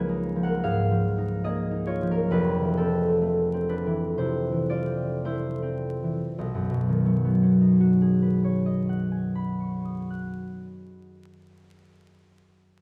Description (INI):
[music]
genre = classical, solo harp piece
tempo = 48-75 BPM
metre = 4/4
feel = rubato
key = B lydian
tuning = A4 = 440 Hz
[part]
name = concert harp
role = solo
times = 0.0-12.0 s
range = F1 to F#6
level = -25 LUFS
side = equal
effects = none
[sound]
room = wet recital hall reverb, RT60 1.4 s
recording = heard from further back in the room, vinyl crackle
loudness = -25 LUFS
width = mono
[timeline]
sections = 0.0-6.4 A section; 6.4-10.5 B section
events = slowing down 0.0-6.4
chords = 0.0 C#13; 2.3 Fmaj7; 6.4 B69